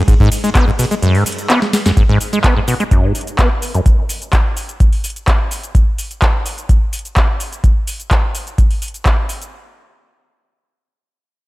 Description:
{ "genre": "acid house", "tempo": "127 BPM", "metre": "4/4", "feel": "straight", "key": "unclear", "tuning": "A4 = 440 Hz", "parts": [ { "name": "string machine, full ensemble", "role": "sustained chords", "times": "0.0-2.0 s", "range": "G#3 to G#4", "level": "-30 LUFS", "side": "equal", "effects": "none" }, { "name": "acid bass, saw", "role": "riff", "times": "0.0-3.8 s", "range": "F#2 to B3", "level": "-16 LUFS", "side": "equal", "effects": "analog chorus, analog delay" }, { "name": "booming analog drum machine", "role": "drums", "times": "0.1-9.5 s", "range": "handclaps, hi-hat, ride cymbal, shaker, snare drum", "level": "-20 LUFS", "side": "equal", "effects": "overdrive" }, { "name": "electronic kick drum", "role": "drums", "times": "0.1-9.2 s", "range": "none", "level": "-13 LUFS", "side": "equal", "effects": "overdrive" } ], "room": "digital ambience", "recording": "none", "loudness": "-13 LUFS", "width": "side -19 dB against mid", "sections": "0.0-2.0 A section; 2.0-9.5 B section", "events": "drop 0.0-2.0; kick drops out 1.0-2.0; drum fill 1.6-2.0; filter sweep on acid bass 2.0-3.9", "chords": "0.0 F#sus4 (rootless); 2.0 F#sus24" }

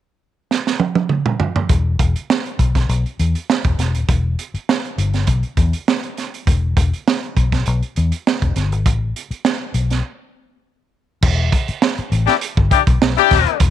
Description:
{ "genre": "funk", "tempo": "101 BPM", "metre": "4/4", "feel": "straight", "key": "E minor", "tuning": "A4 = 440 Hz", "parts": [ { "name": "crunchy breakbeat drum kit", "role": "drums", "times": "0.5-13.7 s", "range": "crash cymbal, hi-hat, kick drum, snare drum, toms", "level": "-17 LUFS", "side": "right 2 dB", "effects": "none" }, { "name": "vintage muted fingered electric bass", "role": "bass", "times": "1.7-13.7 s", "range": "D#1 to E2", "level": "-17 LUFS", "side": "left 2 dB", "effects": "none" }, { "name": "clear horn section", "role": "second line", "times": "12.3-13.6 s", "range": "D4 to G4", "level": "-14 LUFS", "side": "left 16 dB", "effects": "none" } ], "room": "little or no reverb", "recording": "1960s-style stereo", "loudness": "-15 LUFS", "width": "side -11 dB against mid", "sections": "0.0-1.7 A section; 1.7-11.2 B section; 11.2-13.7 C section", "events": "drum fill 0.5-1.7; break 10.0-11.2", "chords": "0.0 N.C.; 1.7 E5; 8.9 Asus2; 11.2 Em7" }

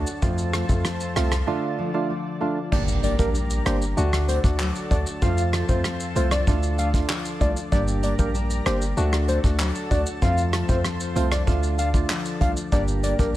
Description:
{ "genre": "dancehall", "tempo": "96 BPM", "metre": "4/4", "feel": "straight", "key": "G minor", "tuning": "A4 = 440 Hz", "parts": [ { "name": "percussive organ stab", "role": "accompaniment", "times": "0.0-13.4 s", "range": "A3 to G4", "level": "-28 LUFS", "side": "right 3 dB", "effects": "chorus, sidechain pumping" }, { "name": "lush unison pad", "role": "sustained chords", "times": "0.0-13.4 s", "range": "F4 to Bb5", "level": "-35 LUFS", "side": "equal", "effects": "chorus, sidechain pumping" }, { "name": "nylon-string guitar", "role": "arpeggios", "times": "0.0-13.4 s", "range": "F2 to D4", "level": "-30 LUFS", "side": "left 3 dB", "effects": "digital delay" }, { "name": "hard-hitting 808-style bass", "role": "bass", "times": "0.0-13.4 s", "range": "G1 to F2", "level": "-24 LUFS", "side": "equal", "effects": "none" }, { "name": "soft brush drum kit", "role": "drums", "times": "0.1-13.3 s", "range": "crash cymbal, handclaps, hi-hat, kick drum, rim click, shaker", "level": "-25 LUFS", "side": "equal", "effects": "none" }, { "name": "soft octave-layered synth lead", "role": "melody", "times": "2.7-13.3 s", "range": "Bb4 to F5", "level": "-29 LUFS", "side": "left 2 dB", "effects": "chorus, digital delay" }, { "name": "impact", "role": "sound effects", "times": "2.7-5.2 s", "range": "none", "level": "-32 LUFS", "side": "equal", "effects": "none" } ], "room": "studio ambience", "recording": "none", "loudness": "-20 LUFS", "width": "side -14 dB against mid", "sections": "0.0-2.7 A section; 2.7-13.4 B section", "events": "break 1.5-2.7; impact 2.7-5.2", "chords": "0.2 F; 1.5 Dm; 2.7 Gm; 4.0 D; 5.2 F; 6.5 Dm; 7.7 Gm; 9.0 D; 10.2 F; 11.5 Dm; 12.7 Gm" }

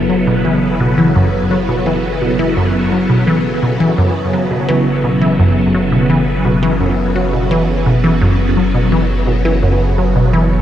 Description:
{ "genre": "ambient, sequencer-driven space music", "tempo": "85 BPM", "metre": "4/4", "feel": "straight", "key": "F# minor", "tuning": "A4 = 440 Hz", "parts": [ { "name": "phased string machine", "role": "sustained chords", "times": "0.0-10.6 s", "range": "C#3 to A4", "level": "-16 LUFS", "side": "equal", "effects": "ensemble chorus, phaser" }, { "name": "warm sub bass", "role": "bass", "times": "0.0-10.6 s", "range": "F#1", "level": "-21 LUFS", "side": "equal", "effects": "none" }, { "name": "resonant blip pluck", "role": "riff", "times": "0.1-10.5 s", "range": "F#2 to F#3", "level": "-14 LUFS", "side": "equal", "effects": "phaser, analog delay" } ], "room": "moderate plate reverb, RT60 3.7 s", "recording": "dark, warm production", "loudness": "-11 LUFS", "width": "side -11 dB against mid", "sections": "0.0-10.6 A section", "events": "fade-in on sub bass 0.0-10.6", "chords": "0.0 F#m7" }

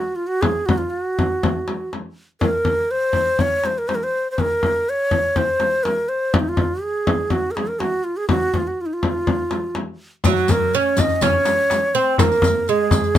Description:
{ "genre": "Arabic maqam ensemble", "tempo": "123 BPM", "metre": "4/4", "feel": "straight", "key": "unclear", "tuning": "A4 = 440 Hz", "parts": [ { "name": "breathy ney", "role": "melody", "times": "0.0-13.2 s", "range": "Eb4 to Eb5", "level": "-20 LUFS", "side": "equal", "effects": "none" }, { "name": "frame drum", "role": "percussion", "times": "0.4-13.2 s", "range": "none", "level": "-21 LUFS", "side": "left 2 dB", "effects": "none" }, { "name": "darbuka", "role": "percussion", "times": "10.2-13.2 s", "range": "none", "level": "-24 LUFS", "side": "left 3 dB", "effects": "none" }, { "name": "riq", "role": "percussion", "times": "10.2-13.2 s", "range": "none", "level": "-29 LUFS", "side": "left 3 dB", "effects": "none" }, { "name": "oud", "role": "second line", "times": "10.3-13.2 s", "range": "Gb3 to Db4", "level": "-22 LUFS", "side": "right 7 dB", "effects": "none" } ], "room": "light reverb", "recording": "close, detailed microphones", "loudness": "-17 LUFS", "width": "side -11 dB against mid", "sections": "0.0-10.2 A section; 10.2-13.2 B section", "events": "none", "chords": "none" }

